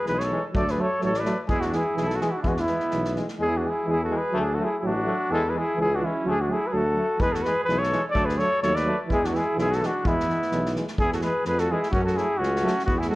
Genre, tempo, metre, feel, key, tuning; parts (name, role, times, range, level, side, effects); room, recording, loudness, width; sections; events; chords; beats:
balkan folk, Balkan brass band; 126 BPM; 2/4; swing 54% on 16ths; E mixolydian; A4 = 440 Hz
mellow cornet; melody; 0.0-13.2 s; E4 to D5; -25 LUFS; equal
clear trumpet; second line; 0.0-13.2 s; B3 to B4; -33 LUFS; right 2 dB
brilliant trombone; accompaniment; 0.1-13.2 s; G#3 to B3; -34 LUFS; left 2 dB
mellow euphonium; accompaniment; 0.1-13.2 s; E3 to G#3; -31 LUFS; right 2 dB
warm tuba; bass; 0.1-13.1 s; A1 to F#2; -29 LUFS; equal
unplugged drum kit; percussion; 0.1-3.3, 7.2-13.2 s; kick drum, snare drum; -31 LUFS; equal
moderate recital hall reverb, RT60 1.3 s; worn, warbling old tape, cassette tape, warbly pitch drift; -22 LUFS; side -18 dB against mid
0.0-3.4 A section; 3.4-11.0 A section; 11.0-13.2 B section
0.0 E; 0.5 D; 1.5 E; 4.3 D; 5.3 E; 6.3 D; 7.2 E; 8.2 D; 9.1 E; 11.9 F#m
0.07 | 0.54 1.02 | 1.49 1.97 | 2.45 2.92 | 3.40 3.87 | 4.35 4.83 | 5.30 5.78 | 6.25 6.73 | 7.20 7.68 | 8.15 8.63 | 9.10 9.57 | 10.05 10.52 | 10.99 11.46 | 11.94 12.41 | 12.88